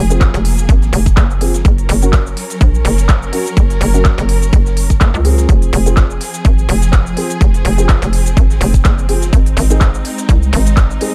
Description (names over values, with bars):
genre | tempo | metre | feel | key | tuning
bass house | 125 BPM | 4/4 | swing 55% on 16ths | F phrygian | A4 = 440 Hz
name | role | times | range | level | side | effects
warm symphonic string section | sustained chords | 0.0-11.1 s | F3 to Bb4 | -26 LUFS | equal | sidechain pumping
hollow knocking FM bass | bass | 0.0-11.0 s | F1 to Db2 | -16 LUFS | equal | tube saturation, sidechain pumping
dark grand piano | stabs | 0.1-11.1 s | C4 to Bb4 | -24 LUFS | equal | sidechain pumping, dub echo
big-room dance drum kit | drums | 0.1-11.1 s | cabasa, handclaps, hi-hat | -25 LUFS | equal | overdrive
breakbeat sampler-style drum kit | drums | 0.2-11.1 s | hi-hat, snare drum, tambourine | -34 LUFS | equal | high-pass filter on snare, sidechain pumping on perc, high-pass filter on perc, sidechain pumping on hats, high-pass filter on hats
electronic kick drum | drums | 0.2-10.9 s | none | -12 LUFS | equal | none
room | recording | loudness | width
little or no reverb | dark, warm production | -12 LUFS | mono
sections
0.0-11.1 A section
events
none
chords
0.0 Fm; 1.6 Gb; 5.5 Fm; 9.3 Ab